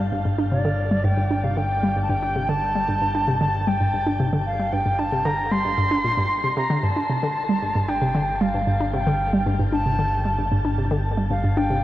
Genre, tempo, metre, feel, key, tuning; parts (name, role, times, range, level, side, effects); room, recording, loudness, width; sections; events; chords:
ambient, sequencer-driven space music; 114 BPM; 4/4; straight; G minor; A4 = 440 Hz
breathy concert flute; melody; 0.0-11.8 s; D5 to C6; -24 LUFS; equal; ping-pong delay
hollow square pluck; riff; 0.0-11.8 s; G2 to D4; -23 LUFS; equal; chorus, ping-pong delay
analog drone; bass; 0.0-11.8 s; G1; -27 LUFS; equal; chorus
wet shimmer reverb, RT60 6.9 s; worn, warbling old tape, cassette tape, warbly pitch drift; -20 LUFS; side -14 dB against mid
0.0-11.8 A section
0.0 Gsus2